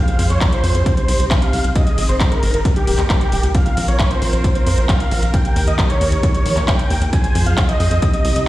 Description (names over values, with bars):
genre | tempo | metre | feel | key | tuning
uplifting trance | 134 BPM | 4/4 | straight | Bb dorian | A4 = 441 Hz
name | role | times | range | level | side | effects
big supersaw lead | melody | 0.0-8.4 s | G4 to Ab5 | -22 LUFS | equal | sidechain pumping, low-pass filter, tape echo
warm studio string section | sustained chords | 0.0-8.5 s | C3 to C5 | -25 LUFS | right 1 dB | sidechain pumping
techno drum kit | drums | 0.1-8.4 s | handclaps, hi-hat | -25 LUFS | equal | none
tight sequencer bass | bass | 0.2-8.4 s | Eb1 to F2 | -17 LUFS | equal | sidechain pumping
electronic kick drum | drums | 0.4-8.1 s | none | -17 LUFS | equal | none
room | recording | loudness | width
light reverb, digital ambience | played on a big sound system in a bare room, stone room reverb | -14 LUFS | side -16 dB against mid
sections
0.0-8.5 A section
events
none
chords
0.0 Fm; 0.9 Cm; 1.8 Ab; 2.7 Eb; 3.5 Bbsus2; 5.3 Eb; 7.1 Fm